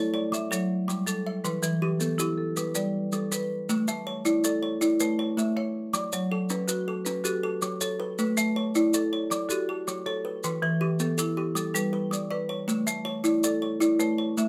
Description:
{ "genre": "southern african traditional, mbira-style interlocking cycle", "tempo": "107 BPM (dotted quarters)", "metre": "12/8", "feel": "straight", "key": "A mixolydian", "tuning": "A4 = 439 Hz", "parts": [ { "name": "kalimba", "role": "arpeggios", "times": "0.0-14.5 s", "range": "E3 to E5", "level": "-30 LUFS", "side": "equal", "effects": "none" }, { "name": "marimba with hard mallets", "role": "arpeggios", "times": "0.0-14.5 s", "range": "E3 to E5", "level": "-31 LUFS", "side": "equal", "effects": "none" }, { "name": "maracas", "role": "percussion", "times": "0.3-14.5 s", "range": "none", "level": "-35 LUFS", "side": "equal", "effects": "none" } ], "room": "light reverb", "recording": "close, detailed microphones", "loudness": "-27 LUFS", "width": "mono", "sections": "0.0-3.7 A section; 3.7-14.5 B section", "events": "none", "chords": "0.3 F#m; 1.4 Em; 2.6 G; 3.7 A; 5.9 F#m; 8.2 A; 9.3 F#m; 10.4 Em; 11.6 G; 12.7 A", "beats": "0.33 0.89 | 1.45 2.01 2.57 3.13 | 3.69 4.25 4.81 5.37 | 5.93 6.50 7.06 7.62 | 8.18 8.74 9.31 9.87 | 10.43 10.99 11.56 12.12 | 12.68 13.25 13.81 14.38" }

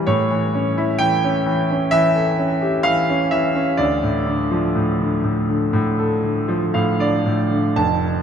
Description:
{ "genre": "classical, lyrical solo piano", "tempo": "58-65 BPM", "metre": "4/4", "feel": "rubato", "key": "D harmonic minor", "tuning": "A4 = 438 Hz", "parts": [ { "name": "clear concert grand piano", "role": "solo", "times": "0.0-8.2 s", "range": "F1 to A5", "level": "-16 LUFS", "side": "equal", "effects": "none" } ], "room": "wet cathedral reverb, RT60 4.8 s", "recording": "in a vast, echoing space", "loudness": "-17 LUFS", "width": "side -8 dB against mid", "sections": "0.0-7.8 A section", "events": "grand piano fill 6.2-7.8", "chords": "0.1 A7; 3.8 Dm", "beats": "| 0.08 1.00 1.93 2.86 | 3.81 4.77 5.74 6.75 | 7.75" }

